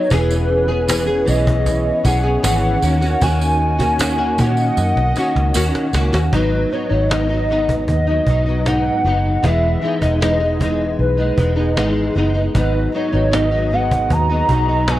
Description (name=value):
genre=indie pop, bedroom pop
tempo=77 BPM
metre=4/4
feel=straight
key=G# minor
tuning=A4 = 441 Hz
part: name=hollow clarinet-like synth lead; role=melody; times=0.0-15.0 s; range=B4 to A#5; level=-20 LUFS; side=equal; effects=analog chorus, analog delay
part: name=nylon-string guitar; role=accompaniment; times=0.0-15.0 s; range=G#2 to G#4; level=-20 LUFS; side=left 1 dB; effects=ensemble chorus, warbly pitch drift
part: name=warm analog pad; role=sustained chords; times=0.1-6.3, 12.5-15.0 s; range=A#3 to D#5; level=-27 LUFS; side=right 2 dB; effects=chorus
part: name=vintage muted fingered electric bass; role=bass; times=0.1-15.0 s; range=E1 to A#2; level=-19 LUFS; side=equal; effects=none
part: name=cajon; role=drums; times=0.1-15.0 s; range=none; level=-22 LUFS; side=equal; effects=none
part: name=tambourine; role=percussion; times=0.1-6.3 s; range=none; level=-31 LUFS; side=right 6 dB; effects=none
room=small room ambience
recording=cassette tape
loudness=-14 LUFS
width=side -14 dB against mid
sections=0.0-6.3 A section; 6.3-15.0 B section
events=drum fill 4.8-6.3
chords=0.1 E6; 2.8 D#m7; 6.3 G#m7; 9.4 Emaj7; 12.6 G#m7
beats=| 0.11 0.89 1.67 2.44 | 3.22 4.00 4.77 5.55 | 6.33 7.11 7.88 8.66 | 9.44 10.22 10.99 11.77 | 12.55 13.33 14.11 14.89